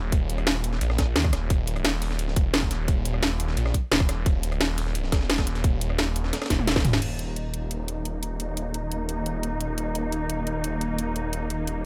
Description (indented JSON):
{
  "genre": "dark technical drum and bass",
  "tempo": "174 BPM",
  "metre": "4/4",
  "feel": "straight",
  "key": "unclear",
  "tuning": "A4 = 440 Hz",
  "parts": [
    { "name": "snarling distorted saw bass", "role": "bass", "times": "0.0-11.9 s", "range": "Eb1 to Eb2", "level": "-30 LUFS", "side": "equal", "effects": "distortion, sidechain pumping" },
    { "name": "breakbeat sampler-style drum kit", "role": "drums", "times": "0.1-7.0 s", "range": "hi-hat, snare drum", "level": "-36 LUFS", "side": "equal", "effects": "high-pass filter on hats, high-pass filter on snare" },
    { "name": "drum and bass drum kit", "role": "drums", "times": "0.1-11.7 s", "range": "crash cymbal, hi-hat, rim click, snare drum, toms", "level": "-28 LUFS", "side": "equal", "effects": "overdrive" },
    { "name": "electronic kick drum", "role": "drums", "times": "0.1-6.8 s", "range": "none", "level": "-26 LUFS", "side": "equal", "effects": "none" },
    { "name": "warm symphonic string section", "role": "sustained chords", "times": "7.0-11.9 s", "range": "Eb3 to Eb4", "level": "-33 LUFS", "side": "equal", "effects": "sidechain pumping, low-pass filter" }
  ],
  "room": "little or no reverb",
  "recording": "none",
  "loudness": "-26 LUFS",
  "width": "mono",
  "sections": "0.0-7.0 A section; 7.0-11.9 B section",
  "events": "drop 0.0-7.0; drum fill 6.5-7.0; filter sweep on string section 7.0-11.9",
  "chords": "0.0 Eb5"
}